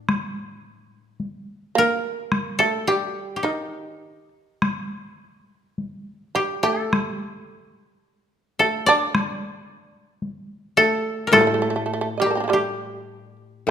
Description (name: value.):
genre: japanese traditional, Japanese chamber music.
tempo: 49-56 BPM.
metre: 2/4.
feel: rubato.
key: unclear.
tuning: A4 = 440 Hz.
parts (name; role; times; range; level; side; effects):
koto; melody; 0.0-13.7 s; D4 to D5; -21 LUFS; left 2 dB; none.
koto; accompaniment; 0.0-1.2, 11.3-13.7 s; A2; -26 LUFS; left 2 dB; none.
solo taiko drums; percussion; 0.1-12.8 s; none; -25 LUFS; left 2 dB; none.
shamisen; second line; 1.8-13.4 s; Eb3 to Eb5; -23 LUFS; right 4 dB; none.
room: moderate recital hall reverb, RT60 1.6 s.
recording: minimal, uncompressed stereo recording.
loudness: -19 LUFS.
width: side -8 dB against mid.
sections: 0.0-13.7 A section.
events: none.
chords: none.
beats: | 0.10 1.21 | 2.32 3.45 | 4.62 5.79 | 6.94 8.06 | 9.14 10.23 | 11.33 12.50 | 13.69.